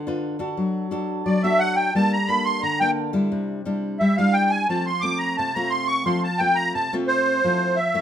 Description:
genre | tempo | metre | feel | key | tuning
samba | 88 BPM | 4/4 | straight | F major | A4 = 444 Hz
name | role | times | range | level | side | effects
nylon-string guitar | accompaniment | 0.0-8.0 s | C3 to B4 | -23 LUFS | left 1 dB | none
musette accordion | melody | 1.3-8.0 s | C5 to D6 | -21 LUFS | right 1 dB | none
room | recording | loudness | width
light reverb | minimal, uncompressed stereo recording | -20 LUFS | side -9 dB against mid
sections
0.0-7.4 A section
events
accordion solo 0.0-7.4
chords
0.0 G7 (rootless); 0.6 D/F#; 1.9 Gmadd9; 3.3 Cadd9; 4.7 F; 7.4 Fmaj7

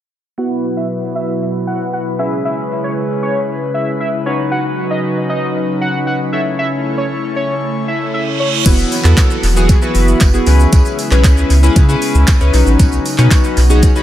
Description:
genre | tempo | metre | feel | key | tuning
dance-pop | 116 BPM | 4/4 | straight | unclear | A4 = 440 Hz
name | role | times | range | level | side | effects
fat analog lead | melody | 0.4-8.5 s | C#5 to F#5 | -21 LUFS | equal | chorus, sidechain pumping, low-pass filter, dub echo
chorused polysynth | accompaniment | 0.4-14.0 s | B3 to C#5 | -18 LUFS | left 1 dB | sidechain pumping, low-pass filter, dub echo
airy breathy pad | sustained chords | 0.4-14.0 s | B2 to C#5 | -21 LUFS | left 1 dB | chorus, sidechain pumping, low-pass filter
reverse cymbal and downlifter | sound effects | 8.0-12.8 s | none | -24 LUFS | right 5 dB | none
round analog bass | bass | 8.7-13.9 s | E1 to C#3 | -11 LUFS | equal | sidechain pumping
pop drum kit | drums | 8.7-14.0 s | crash cymbal, handclaps, hi-hat, kick drum, shaker | -13 LUFS | equal | overdrive
tambourine | percussion | 8.7-13.9 s | none | -31 LUFS | right 9 dB | dub echo
room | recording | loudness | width
light reverb | echo-heavy mix | -12 LUFS | side -12 dB against mid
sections
0.4-8.7 A section; 8.7-14.0 B section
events
filter sweep 0.4-8.7; reverse cymbal 8.0-8.7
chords
0.4 Esus2; 2.2 C#m7; 4.3 Badd9; 6.3 A; 8.7 Esus2; 10.5 C#m7; 12.5 Badd9

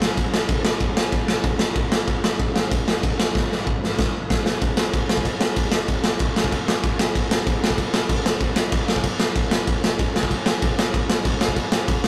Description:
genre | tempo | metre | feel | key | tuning
punk | 190 BPM | 4/4 | straight | none | none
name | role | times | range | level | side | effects
raw garage drum kit | drums | 0.0-12.1 s | crash cymbal, kick drum, snare drum | -22 LUFS | equal | none
room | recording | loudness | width
little or no reverb | rough rehearsal-room recording, tube saturation | -22 LUFS | mono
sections
0.0-4.6 A section; 4.6-12.1 B section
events
drum fill 3.4-4.6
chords
none

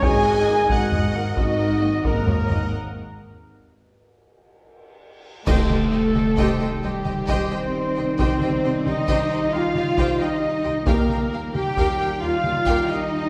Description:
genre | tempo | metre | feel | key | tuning
cinematic, epic orchestral film score | 89 BPM (dotted quarters) | 12/8 | straight | C dorian from 5.5 s | A4 = 438 Hz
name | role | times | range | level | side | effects
warm symphonic violin section | melody | 0.0-13.3 s | G4 to G#5 | -32 LUFS | equal | none
warm symphonic violin section | second line | 0.0-13.0 s | F#4 to G5 | -35 LUFS | equal | none
warm symphonic viola section | accompaniment | 0.0-13.0 s | F#4 to F#5 | -34 LUFS | equal | none
dark French horn section | sustained chords | 0.0-13.3 s | Bb3 to G#4 | -30 LUFS | equal | none
bright trumpet section | stabs | 0.0-13.3 s | G4 to G#5 | -30 LUFS | equal | none
clear symphonic double bass section | bass | 0.0-13.0 s | G#1 to Eb2 | -32 LUFS | equal | none
dark symphonic cello section | bass | 0.0-13.3 s | G#2 to G4 | -28 LUFS | equal | none
solo taiko drums | drums | 0.0-13.1 s | none | -28 LUFS | equal | none
warm trombone section | sustained chords | 0.5-13.3 s | D#3 to A#3 | -34 LUFS | equal | none
cymbal swell, clash cymbals and concert bass drum | percussion | 2.7-6.3 s | none | -33 LUFS | equal | none
timpani | percussion | 5.5-6.1 s | C3 | -36 LUFS | equal | none
room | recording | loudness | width
wet scoring stage reverb, RT60 1.6 s | heard from further back in the room | -21 LUFS | mono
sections
0.0-5.5 A section; 5.5-13.3 B section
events
break 2.7-5.5; drum fill 4.8-5.5; band accent 5.5-5.9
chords
0.0 D#m/G#; 2.7 N.C.; 5.5 Cm; 10.9 Ebadd9

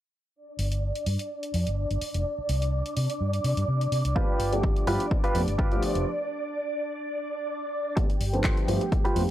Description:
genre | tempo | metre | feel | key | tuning
filtered disco house | 126 BPM | 4/4 | swing 54% on 16ths | unclear | A4 = 440 Hz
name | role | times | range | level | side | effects
string machine, full ensemble | sustained chords | 0.3-9.3 s | G4 to D6 | -32 LUFS | equal | ensemble chorus, sidechain pumping, low-pass filter
vintage muted fingered electric bass | bass | 0.6-9.3 s | F1 to C3 | -27 LUFS | equal | sidechain pumping, low-pass filter
house drum kit | drums | 0.6-9.3 s | handclaps, hi-hat, rim click | -36 LUFS | left 1 dB | sidechain pumping on hats, small room ambience
dark baby grand piano | accompaniment | 4.2-9.2 s | F3 to G4 | -30 LUFS | equal | phaser, sidechain pumping, low-pass filter
direct-recorded clean electric guitar | riff | 4.2-9.2 s | F4 to B4 | -29 LUFS | right 1 dB | analog chorus, sidechain pumping, low-pass filter
electronic kick drum | drums | 4.2-9.0 s | none | -26 LUFS | equal | small room ambience
room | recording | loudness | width
light reverb | dry, gritty hardware recording | -25 LUFS | side -13 dB against mid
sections
0.3-8.0 A section; 8.0-9.3 B section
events
filter sweep 0.3-8.0, 8.0-9.3; break 6.1-8.0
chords
0.3 G5; 2.3 Csus2; 4.2 G7; 6.1 N.C.; 8.0 G7

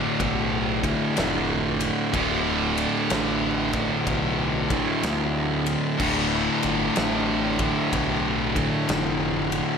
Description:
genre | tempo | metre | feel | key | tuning
stoner and doom metal | 62 BPM | 4/4 | swing 66% on 8ths | unclear | A4 = 443 Hz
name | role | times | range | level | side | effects
distorted electric guitar | riff | 0.0-9.8 s | D2 to D3 | -27 LUFS | equal | overdrive
thick fuzz guitar | riff | 0.0-9.8 s | D2 to D3 | -28 LUFS | left 10 dB | distortion
thick fuzz guitar | riff | 0.0-9.8 s | D2 to D3 | -27 LUFS | right 10 dB | distortion
growling picked electric bass | bass | 0.2-9.6 s | D1 to D2 | -32 LUFS | equal | overdrive
big rock drum kit | drums | 0.2-9.7 s | crash cymbal, kick drum, ride cymbal, snare drum | -30 LUFS | left 2 dB | none
room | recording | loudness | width
light reverb | none | -21 LUFS | side -6 dB against mid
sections
0.0-9.8 A section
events
none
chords
0.0 Dm

